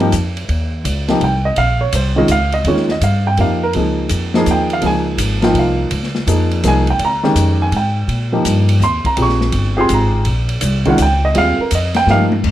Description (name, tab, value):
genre	modal jazz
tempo	166 BPM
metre	3/4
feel	swing 66% on 8ths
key	unclear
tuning	A4 = 443 Hz
part	warm baby grand piano	accompaniment	0.0-12.3 s	Eb3 to Db6	-15 LUFS	right 1 dB	none
part	upright bass	bass	0.0-12.5 s	G1 to Bb2	-16 LUFS	equal	none
part	open jazz drum kit	drums	0.0-12.5 s	crash cymbal, hi-hat, kick drum, ride cymbal, snare drum, toms	-23 LUFS	left 1 dB	none
room	moderate studio reverb, RT60 0.9 s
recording	none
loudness	-13 LUFS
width	side -13 dB against mid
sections	0.0-12.4 A section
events	drum fill 12.1-12.4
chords	0.0 Ebadd9; 3.7 Bbm9; 8.1 Ebadd9